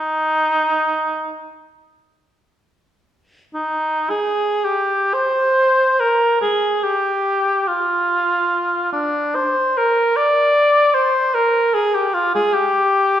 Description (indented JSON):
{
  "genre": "classical, free, expressive piece for unaccompanied cor anglais",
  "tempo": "24-52 BPM (dotted quarters)",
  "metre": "6/8",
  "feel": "rubato",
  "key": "Eb major",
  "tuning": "A4 = 440 Hz",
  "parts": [
    { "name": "mellow cor anglais", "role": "solo", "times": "0.0-13.2 s", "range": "D4 to D5", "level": "-15 LUFS", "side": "equal", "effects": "none" }
  ],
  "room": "wet recital hall reverb, RT60 1.4 s",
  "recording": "heard from further back in the room",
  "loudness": "-15 LUFS",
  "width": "side -11 dB against mid",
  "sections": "0.0-3.5 A section; 3.5-13.2 B section",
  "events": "none",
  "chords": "none"
}